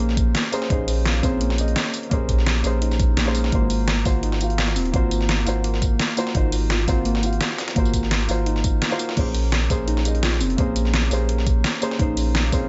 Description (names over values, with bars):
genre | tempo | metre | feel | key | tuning
liquid drum and bass | 170 BPM | 4/4 | swing 53% on 16ths | Bb minor | A4 = 437 Hz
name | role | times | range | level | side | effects
dark concert grand piano | accompaniment | 0.0-12.7 s | Bb3 to F5 | -29 LUFS | equal | digital delay
harp-like synth pluck | arpeggios | 0.0-12.7 s | Ab3 to F4 | -31 LUFS | equal | chorus, tape echo
warm sub bass | bass | 0.0-12.7 s | Eb1 to Bb1 | -25 LUFS | equal | none
dusty soul sampler-style drum kit | drums | 0.0-12.6 s | hi-hat, snare drum | -34 LUFS | equal | high-pass filter on hats, high-pass filter on snare
pop drum kit | drums | 0.0-12.6 s | crash cymbal, hi-hat, snare drum, tambourine | -28 LUFS | equal | overdrive
electronic kick drum | drums | 0.2-12.6 s | none | -24 LUFS | equal | none
room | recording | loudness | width
little or no reverb | nothing above 7.8 kHz | -21 LUFS | mono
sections
0.0-12.7 A section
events
none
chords
0.0 Bbm9; 3.5 Ab13; 9.2 Bbm9